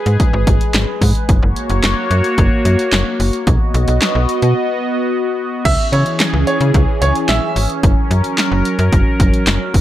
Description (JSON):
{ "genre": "synth-pop", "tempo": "110 BPM", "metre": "4/4", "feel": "straight", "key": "C# dorian", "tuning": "A4 = 440 Hz", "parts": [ { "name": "phased analog pad", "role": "sustained chords", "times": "0.0-9.8 s", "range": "E3 to D#5", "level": "-18 LUFS", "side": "equal", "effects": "phaser, chorus" }, { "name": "slap-like FM bass", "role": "bass", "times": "0.1-9.8 s", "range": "F#1 to C#3", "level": "-15 LUFS", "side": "equal", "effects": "none" }, { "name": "punchy analog drum machine", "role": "drums", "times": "0.1-9.8 s", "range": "crash cymbal, handclaps, hi-hat, kick drum, snare drum", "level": "-16 LUFS", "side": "equal", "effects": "none" }, { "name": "bright grand piano", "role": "second line", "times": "5.7-7.7 s", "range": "C#5 to E5", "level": "-19 LUFS", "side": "right 2 dB", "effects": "digital delay" } ], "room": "light reverb, digital ambience", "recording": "none", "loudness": "-12 LUFS", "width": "side -13 dB against mid", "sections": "0.0-5.7 A section; 5.7-9.8 B section", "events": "break 4.6-5.7", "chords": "0.0 G#m; 1.3 F#; 3.5 B; 5.7 C#m; 7.8 F#" }